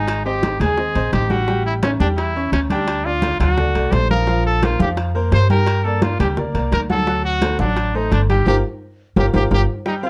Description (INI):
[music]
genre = latin, salsa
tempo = 172 BPM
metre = 4/4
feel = straight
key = G minor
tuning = A4 = 440 Hz
[part]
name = clear trumpet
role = melody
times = 0.0-10.1 s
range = C#4 to C5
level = -24 LUFS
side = equal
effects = none
[part]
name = bright baby grand piano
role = accompaniment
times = 0.0-10.1 s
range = F3 to Ab5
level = -25 LUFS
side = equal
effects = none
[part]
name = upright bass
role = bass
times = 0.0-9.6 s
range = G1 to G2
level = -22 LUFS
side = equal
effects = none
[part]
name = bongos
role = percussion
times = 0.1-10.1 s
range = none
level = -29 LUFS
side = equal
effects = none
[part]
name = congas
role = percussion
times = 0.1-10.1 s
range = none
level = -26 LUFS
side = equal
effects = none
[part]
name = timbales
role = percussion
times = 0.1-9.6 s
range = none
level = -33 LUFS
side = equal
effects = none
[sound]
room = light reverb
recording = dark, warm production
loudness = -18 LUFS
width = mono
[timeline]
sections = 0.0-9.9 A section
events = band accent 8.5-9.9; drum fill 8.8-9.9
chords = 0.1 Abmaj7; 1.5 A7; 2.9 Dsus4; 3.6 D; 4.3 Bbsus2; 5.7 Gm; 7.1 D7; 8.5 Gm7